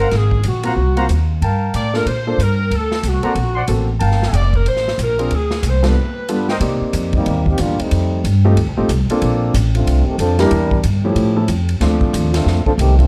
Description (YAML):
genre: jazz, big band swing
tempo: 185 BPM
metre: 4/4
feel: swing 62% on 8ths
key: G minor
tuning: A4 = 440 Hz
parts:
  - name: clear saxophone section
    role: melody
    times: 0.0-6.5 s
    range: Gb4 to D5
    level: -24 LUFS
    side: equal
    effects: plate reverb
  - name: mellow trumpet section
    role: stabs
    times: 0.0-6.6 s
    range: Bb4 to C6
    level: -25 LUFS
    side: equal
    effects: none
  - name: upright bass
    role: bass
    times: 0.0-13.1 s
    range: F1 to C3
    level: -18 LUFS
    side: equal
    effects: none
  - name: swinging big-band drum kit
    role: drums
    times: 0.0-13.0 s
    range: hi-hat, kick drum, ride cymbal, snare drum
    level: -27 LUFS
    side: equal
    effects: none
  - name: clear concert grand piano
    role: accompaniment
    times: 0.6-12.3 s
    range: G2 to D5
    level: -22 LUFS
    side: equal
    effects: none
  - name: clear trombone section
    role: second line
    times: 7.1-13.0 s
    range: Eb3 to Bb4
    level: -21 LUFS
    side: equal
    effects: none
room: light reverb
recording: dark, warm production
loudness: -17 LUFS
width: mono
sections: 0.0-6.6 A section; 6.6-13.1 B section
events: band accent 5.8; trombone section solo 6.6-13.1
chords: 0.1 Ab13; 1.4 Gm9; 2.7 D7b13; 4.0 Gm9; 5.3 Dm7b5; 6.0 G7; 6.6 Cm7; 7.9 F9; 9.2 Bbmaj9; 10.5 Em7b5; 11.2 A7b13; 11.8 Dm7